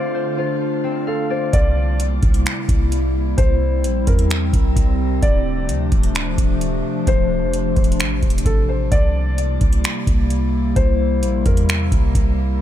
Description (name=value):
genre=hip hop, atmospheric cloud-rap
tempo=130 BPM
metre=4/4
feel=half-time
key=unclear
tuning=A4 = 440 Hz
part: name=felt-muted upright piano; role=melody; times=0.0-12.6 s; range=A4 to D5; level=-26 LUFS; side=left 3 dB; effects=low-pass filter, ping-pong delay
part: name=warbly tape-like pad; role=sustained chords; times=0.0-12.6 s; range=C3 to F4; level=-23 LUFS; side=left 1 dB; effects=chorus, built-in reverb, sidechain pumping
part: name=concert harp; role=arpeggios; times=0.0-3.8 s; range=Bb3 to F5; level=-32 LUFS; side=left 4 dB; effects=low-pass filter, ping-pong delay
part: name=clean 808-style bass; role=bass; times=1.5-12.6 s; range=D1 to E2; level=-20 LUFS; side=equal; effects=none
part: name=booming analog drum machine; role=drums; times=1.5-12.3 s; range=finger snaps, hi-hat, kick drum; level=-18 LUFS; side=equal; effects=none
room=little or no reverb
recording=none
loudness=-16 LUFS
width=side -11 dB against mid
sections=0.0-1.5 A section; 1.5-12.6 B section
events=none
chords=0.0 Dm7; 1.5 C7; 5.2 Dm7; 8.9 C7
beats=0.15 0.61 1.07 | 1.53 2.00 2.46 2.92 | 3.38 3.84 4.30 4.76 | 5.23 5.69 6.15 6.61 | 7.07 7.53 8.00 8.46 | 8.92 9.38 9.84 10.30 | 10.76 11.23 11.69 12.15